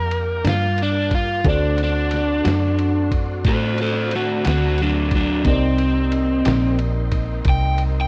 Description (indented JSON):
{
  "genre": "slow blues",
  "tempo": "60 BPM (dotted quarters)",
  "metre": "12/8",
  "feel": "straight",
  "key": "unclear",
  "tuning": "A4 = 440 Hz",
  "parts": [
    { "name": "overdriven electric guitar", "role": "melody", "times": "0.0-8.1 s", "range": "F#3 to G5", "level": "-23 LUFS", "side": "equal", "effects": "none" },
    { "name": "warm upright piano", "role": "accompaniment", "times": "0.0-8.1 s", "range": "Eb4 to D5", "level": "-33 LUFS", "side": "equal", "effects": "none" },
    { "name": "tonewheel organ", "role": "sustained chords", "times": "0.0-8.1 s", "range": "A3 to D5", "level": "-37 LUFS", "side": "equal", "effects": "slow rotary speaker, chorus vibrato" },
    { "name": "vintage muted fingered electric bass", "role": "bass", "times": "0.0-8.1 s", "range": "Bb1 to A2", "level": "-24 LUFS", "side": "equal", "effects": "none" },
    { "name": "lo-fi sampler-style drum kit", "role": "drums", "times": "0.1-7.9 s", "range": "kick drum, ride cymbal, snare drum", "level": "-26 LUFS", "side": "equal", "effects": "none" },
    { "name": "clean electric guitar", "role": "accompaniment", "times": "0.4-6.7 s", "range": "G2 to G4", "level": "-28 LUFS", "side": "equal", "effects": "tremolo" },
    { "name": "mellow saxophone section", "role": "sustained chords", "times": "1.5-8.1 s", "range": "Bb3 to F#4", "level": "-35 LUFS", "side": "equal", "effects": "none" }
  ],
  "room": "little or no reverb",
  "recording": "dry, close 1970s-style studio recording",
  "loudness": "-19 LUFS",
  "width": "mono",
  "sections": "0.0-8.1 A section",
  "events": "overdriven electric guitar solo 0.0-8.1",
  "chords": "0.0 Gm7; 1.4 D7; 5.5 Cm7"
}